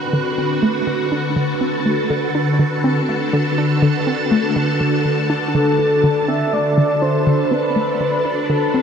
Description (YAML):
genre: ambient, sequencer-driven space music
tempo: 122 BPM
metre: 4/4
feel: straight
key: unclear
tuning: A4 = 440 Hz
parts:
  - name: phased string machine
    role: sustained chords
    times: 0.0-8.8 s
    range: D3 to A5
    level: -19 LUFS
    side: equal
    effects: ensemble chorus, phaser
  - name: hollow square pluck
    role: riff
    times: 0.0-8.8 s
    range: D3 to D4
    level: -20 LUFS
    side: equal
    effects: chorus, tape echo
  - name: wind-like tuned noise texture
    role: texture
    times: 0.0-8.8 s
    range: B4 to B5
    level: -28 LUFS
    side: right 4 dB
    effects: built-in reverb
  - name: breathy flute-like synth lead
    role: melody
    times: 5.5-8.8 s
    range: A4 to E5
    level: -18 LUFS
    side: equal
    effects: lush chorus, tape echo
room: wet huge ambient reverb, RT60 7.3 s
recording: none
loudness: -15 LUFS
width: side -7 dB against mid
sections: 0.0-8.8 A section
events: none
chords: 0.0 D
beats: 0.14 0.63 1.12 | 1.61 2.10 2.60 3.09 | 3.58 4.07 4.56 5.05 | 5.55 6.04 6.53 7.02 | 7.51 8.01 8.50